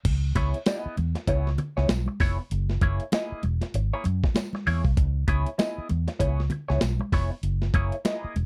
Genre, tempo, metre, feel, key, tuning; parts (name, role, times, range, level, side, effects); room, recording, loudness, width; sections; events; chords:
funk; 98 BPM; 4/4; swing 60% on 16ths; C# dorian; A4 = 440 Hz
breakbeat sampler-style drum kit; drums; 0.0-8.5 s; crash cymbal, hi-hat, kick drum, snare drum; -29 LUFS; equal
vintage muted fingered electric bass; bass; 0.1-8.5 s; E1 to F#2; -28 LUFS; equal
clean electric guitar; accompaniment; 0.4-8.4 s; A#3 to D#5; -33 LUFS; equal; wah
congas; percussion; 0.4-8.5 s; -35 LUFS; equal
tambourine; percussion; 0.7-8.2 s; -49 LUFS; equal
little or no reverb; dry, close 1970s-style studio recording; -26 LUFS; mono
0.1-8.5 A section
0.1 C#m7; 2.5 F#9; 5.0 C#m7; 7.4 F#9